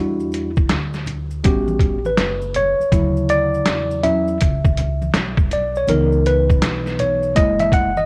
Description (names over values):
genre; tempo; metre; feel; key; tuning
hip hop, jazz-hop; 81 BPM; 4/4; swing 65% on 16ths; unclear; A4 = 440 Hz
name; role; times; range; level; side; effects
mellow tine electric piano; accompaniment; 0.0-8.1 s; C#3 to F#5; -21 LUFS; equal; none
upright bass; bass; 0.0-8.1 s; F#1 to E2; -26 LUFS; equal; none
maracas and congas; percussion; 0.2-8.1 s; none; -34 LUFS; equal; none
trip hop sampler-style drum kit; drums; 0.3-8.0 s; hi-hat, kick drum, snare drum; -21 LUFS; equal; none
room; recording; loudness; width
moderate plate reverb, RT60 1.9 s; worn, warbling old tape, cassette tape, warbly pitch drift; -18 LUFS; mono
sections
0.0-8.1 A section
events
tine electric piano solo 0.0-8.1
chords
0.0 Em7; 1.4 A13; 2.9 Dmaj9; 5.9 C#m7; 7.4 F#9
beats
0.70 1.44 2.18 | 2.92 3.66 4.40 5.14 | 5.89 6.63 7.37